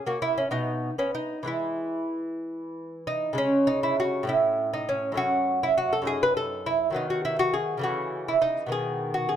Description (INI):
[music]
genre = classical, baroque-style dance for lute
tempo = 62-70 BPM (dotted quarters)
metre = 6/8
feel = rubato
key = E major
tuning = A4 = 440 Hz
[part]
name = lute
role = solo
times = 0.0-9.4 s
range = F#2 to B4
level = -24 LUFS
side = right 1 dB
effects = none
[sound]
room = light reverb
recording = close, detailed microphones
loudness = -24 LUFS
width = side -10 dB against mid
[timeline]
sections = 0.0-3.4 A section; 3.4-9.4 A section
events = none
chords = 0.0 A#dim; 0.5 N.C.; 1.5 E; 3.4 C#5; 4.3 A; 5.2 F#m; 6.1 D#dim/F#; 7.0 B/D#; 7.8 A/C#; 8.7 G#m/B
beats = 0.52 | 1.48 2.44 | 3.38 4.29 | 5.18 6.08 | 6.96 7.84 | 8.72